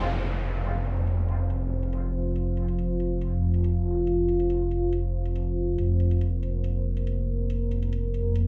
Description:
deep dubstep; 140 BPM; 4/4; half-time; A4 = 440 Hz
deep dark ambient pad; sustained chords; 0.8-8.5 s; F4 to C5; -32 LUFS; equal; chorus, built-in reverb
dark detuned saw bass; bass; 0.0-8.5 s; F1; -28 LUFS; equal
downlifter; sound effects; 0.0-2.4 s; -39 LUFS; equal
electronic hi-hat; drums; 0.1-8.4 s; -60 LUFS; equal; low-pass filter on hats, small room ambience, low-pass filter on snare
light reverb; small room ambience; -27 LUFS; mono
0.0-8.5 A section
filter sweep on ambient pad 0.0-8.5
0.0 F5
0.21 | 0.64 1.07 1.50 1.93 | 2.36 2.79 3.21 3.64 | 4.07 4.50 4.93 5.36 | 5.79 6.21 6.64 7.07 | 7.50 7.93 8.36

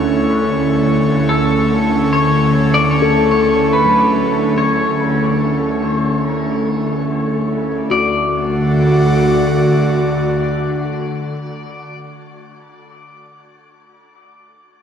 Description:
ambient; 73 BPM; 4/4; straight; D major; A4 = 440 Hz
airy breathy pad; sustained chords; 0.0-12.0 s; D3 to D5; -16 LUFS; equal; chorus, shimmer reverb
handpan; arpeggios; 0.0-12.5 s; F#3 to A4; -24 LUFS; left 3 dB; shimmer reverb, dub echo
warm symphonic double bass section; bass; 0.0-10.4 s; D2; -29 LUFS; equal
bowed-like drone; drone; 0.0-12.1 s; D3; -21 LUFS; equal; built-in reverb, phaser
pedal steel guitar; melody; 1.3-12.0 s; A4 to D5; -20 LUFS; left 1 dB; shimmer reverb, dub echo
wet spring reverb, RT60 2.7 s; echo-heavy mix; -13 LUFS; side -8 dB against mid
0.0-7.9 A section; 7.9-11.2 B section
fade-out on double bass section 0.0-7.9
0.0 A/D; 7.9 D
0.45 | 1.27 2.09 2.91 3.73 | 4.56 5.39 6.22 7.07 | 7.92 8.75 9.57 10.40

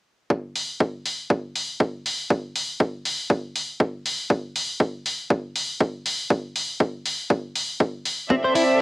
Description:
nu-disco, nu disco; 120 BPM; 4/4; swing 55% on 16ths; C major; A4 = 442 Hz
electronic kick drum; drums; 0.3-8.4 s; -22 LUFS; equal; high-pass filter on kick, cassette tape
electronic hi-hat; drums; 0.6-8.7 s; -26 LUFS; left 1 dB; cassette tape
dark studio violin section; sustained chords; 8.3-8.8 s; C4 to E5; -19 LUFS; right 1 dB; sidechain pumping, cassette tape
direct-recorded clean electric guitar; riff; 8.3-8.6 s; C4 to C5; -20 LUFS; left 1 dB; analog chorus, cassette tape
digital ambience; home recording on cassette; -22 LUFS; side -20 dB against mid
0.3-8.8 A section
0.3 N.C.; 8.3 C69
| 0.30 0.81 1.30 1.80 | 2.31 2.81 3.31 3.81 | 4.30 4.80 5.30 5.80 | 6.30 6.80 7.30 7.80 | 8.30 8.80

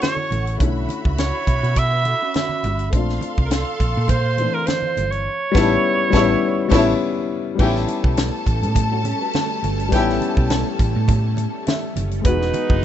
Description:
lush 1970s-style soul; 103 BPM; 4/4; swing 54% on 16ths; A4 = 440 Hz
warm alto saxophone; melody; 0.0-7.0, 12.3-12.8 s; A4 to E5; -22 LUFS; right 4 dB
warm studio string section; second line; 0.0-11.9 s; E4 to C#6; -28 LUFS; left 1 dB
dark baby grand piano; accompaniment; 0.0-12.8 s; D3 to E5; -22 LUFS; left 6 dB
tight funk drum kit; drums; 0.0-12.8 s; crash cymbal, hi-hat, kick drum, snare drum; -21 LUFS; equal
congas; percussion; 0.0-12.7 s; -30 LUFS; right 7 dB
hollow-body short-scale fingered electric bass; bass; 0.3-12.8 s; E1 to B2; -22 LUFS; right 1 dB
mellow electric guitar; riff; 1.6-2.9, 6.7-10.0 s; C#4 to B4; -32 LUFS; right 9 dB; phaser
string machine, violins; sustained chords; 7.6-12.8 s; E3 to D#5; -30 LUFS; right 1 dB; ensemble chorus
warm horn section; stabs; 7.6-12.8 s; G#3 to G4; -28 LUFS; equal; tape echo
studio reverb; rough home demo mix, nothing above 7.9 kHz; -17 LUFS; side -10 dB against mid
0.0-7.6 A section; 7.6-12.2 B section
band accent 5.3-7.6; grand piano fill 11.4-12.2
0.0 F#m7; 0.6 Bm11; 2.9 Bbmaj9; 5.3 A9; 12.2 Emaj7
0.02 | 0.60 1.18 1.76 2.35 | 2.93 3.51 4.09 4.68 | 5.26 5.84 6.42 7.01 | 7.59 8.17 8.76 9.34 | 9.92 10.50 11.09 11.67 | 12.25 12.83

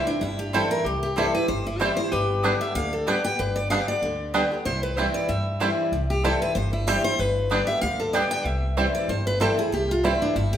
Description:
bluegrass; 189 BPM; 4/4; swing 55% on 8ths; C major; A4 = 445 Hz
picked steel-string acoustic guitar; melody; 0.0-10.6 s; D4 to G5; -26 LUFS; equal
lap resonator guitar; second line; 0.0-5.7 s; E4 to G4; -32 LUFS; left 2 dB
picked steel-string acoustic guitar; accompaniment; 0.0-10.6 s; G2 to G4; -29 LUFS; left 1 dB
upright bass; bass; 0.2-10.6 s; G1 to G2; -29 LUFS; equal
bluegrass banjo; arpeggios; 0.5-10.1 s; G3 to E4; -28 LUFS; right 2 dB
mandolin; stabs; 0.5-10.1 s; B3 to G5; -30 LUFS; right 2 dB
wet large studio reverb, RT60 1.3 s; band playing live in one room; -21 LUFS; side -10 dB against mid
0.0-5.9 A section; 5.9-10.6 A section
0.0 C; 2.1 G; 4.7 C; 7.2 G; 8.5 C
0.21 0.53 | 0.85 1.17 1.49 1.80 | 2.12 2.44 2.75 3.07 | 3.39 3.71 4.02 4.34 | 4.66 4.97 5.29 5.61 | 5.92 6.24 6.56 6.87 | 7.19 7.51 7.82 8.14 | 8.46 8.77 9.09 9.41 | 9.72 10.04 10.36

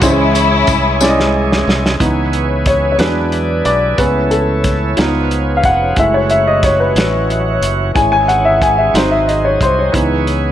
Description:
slow gospel; 60 BPM (dotted quarters); 6/8; straight; C# minor; A4 = 440 Hz
warm studio string section; melody; 0.0-1.3 s; G#3 to E4; -15 LUFS; left 3 dB
warm upright piano; accompaniment; 0.0-10.5 s; E3 to G#5; -14 LUFS; left 1 dB
bright tonewheel organ; sustained chords; 0.0-10.5 s; D#3 to G#4; -21 LUFS; right 4 dB; slow rotary speaker
fingered electric bass; bass; 0.0-10.5 s; E#1 to E2; -18 LUFS; equal
warm soul drum kit; drums; 0.0-10.4 s; hi-hat, kick drum, snare drum; -18 LUFS; equal
tambourine; percussion; 0.0-1.3 s; -24 LUFS; left 10 dB
dark French horn section; sustained chords; 2.0-10.5 s; E3 to E5; -24 LUFS; left 2 dB
light reverb, studio reverb; -11 LUFS; side -11 dB against mid
0.0-2.0 A section; 2.0-10.5 B section
drum fill 1.0-2.0; upright piano solo 2.0-10.5
0.0 C#m; 2.0 C#m7; 3.0 E7; 4.0 Amaj7/C#; 5.0 C#7; 6.0 F#m7; 8.0 C#m/G#; 8.9 G#7; 9.9 C#m7
| 0.02 1.01 | 2.00 3.00 | 3.99 4.98 | 5.97 6.96 | 7.96 8.95 | 9.94

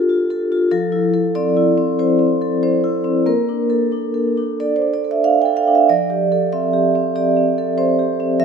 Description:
classical, contemporary piece for solo vibraphone; 94 BPM; 4/4; rubato; A4 = 444 Hz
vibraphone with medium mallets; solo; 0.0-8.4 s; F3 to G5; -15 LUFS; right 1 dB
moderate scoring stage reverb, RT60 1.8 s; -15 LUFS; side -6 dB against mid
0.0-8.4 A section
0.0 Dm; 0.7 Fmaj7; 3.3 Bbmaj7; 5.9 Fmaj9
0.10 | 0.72 1.36 2.00 2.63 | 3.27 3.93 4.58 5.22 | 5.87 6.51 7.15 7.78 | 8.41

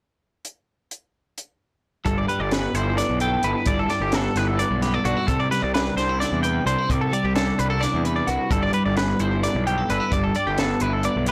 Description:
math rock and midwest emo; 261 BPM (eighths); 7/8; straight; G major; A4 = 440 Hz
compact cocktail drum kit; drums; 0.4-11.3 s; hi-hat, kick drum, snare drum; -30 LUFS; equal
twelve-string electric guitar; accompaniment; 2.1-11.3 s; G2 to B4; -28 LUFS; equal; lush chorus, plate reverb
twelve-string electric guitar; arpeggios; 2.1-11.3 s; F#4 to G5; -27 LUFS; equal; plate reverb
fuzz picked electric bass; bass; 2.1-11.3 s; G1 to E2; -28 LUFS; equal; overdrive
light reverb; blown-out, overdriven recording, overdrive; -22 LUFS; mono
0.5-2.1 A section; 2.1-11.3 B section
0.5 N.C.; 2.1 G69; 5.3 C69; 8.5 G69
| 0.45 0.68 0.91 1.14 1.37 1.60 1.83 | 2.06 2.29 2.52 2.75 2.98 3.21 3.44 | 3.67 3.90 4.13 4.36 4.59 4.82 5.05 | 5.28 5.51 5.75 5.97 6.21 6.44 6.67 | 6.90 7.13 7.36 7.59 7.82 8.05 8.28 | 8.51 8.74 8.97 9.20 9.43 9.66 9.89 | 10.12 10.35 10.58 10.81 11.04 11.27

